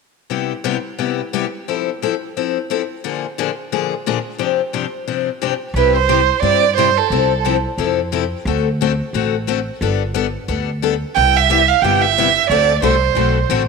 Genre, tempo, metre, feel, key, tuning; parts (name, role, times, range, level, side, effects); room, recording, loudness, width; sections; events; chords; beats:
acoustic string swing (jazz manouche); 178 BPM; 4/4; swing 62% on 8ths; C major; A4 = 440 Hz
picked steel-string acoustic guitar; accompaniment; 0.3-13.6 s; G2 to A4; -19 LUFS; left 12 dB
upright bass; bass; 5.7-13.7 s; G1 to G2; -21 LUFS; equal
warm violin; melody; 5.8-7.4, 11.2-13.5 s; A4 to G5; -14 LUFS; right 13 dB; slapback echo
moderate plate reverb, RT60 2.9 s; 1960s-style stereo with parts hard left and right; -15 LUFS; side -4 dB against mid
0.3-5.8 A section; 5.8-13.7 B section
0.3 Cmaj7; 1.7 Fmaj7; 3.0 Bb7; 4.4 G7sus4; 5.8 C; 7.1 Fmaj7/C; 8.5 D7; 9.8 Gadd9; 11.2 Cmaj7; 12.5 D7
| 0.31 0.65 0.99 1.33 | 1.68 2.02 2.36 2.70 | 3.04 3.38 3.72 4.05 | 4.39 4.73 5.07 5.41 | 5.75 6.09 6.43 6.76 | 7.10 7.44 7.78 8.12 | 8.45 8.79 9.13 9.47 | 9.80 10.14 10.48 10.82 | 11.15 11.49 11.83 12.16 | 12.50 12.84 13.18 13.51